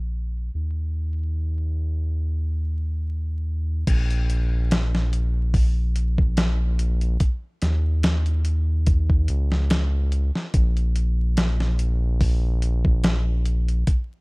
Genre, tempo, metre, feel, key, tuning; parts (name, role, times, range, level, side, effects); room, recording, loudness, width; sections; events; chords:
trip hop; 72 BPM; 4/4; swing 54% on 16ths; A4 = 441 Hz
round analog bass; bass; 0.0-13.8 s; Bb1 to Eb2; -21 LUFS; equal
dusty soul sampler-style drum kit; drums; 3.9-14.1 s; crash cymbal, hi-hat, kick drum, snare drum; -22 LUFS; equal
little or no reverb; dark, warm production, vinyl crackle, low-pass filter; -20 LUFS; side -30 dB against mid
0.0-3.9 A section; 3.9-14.2 B section
filter sweep 0.0-3.9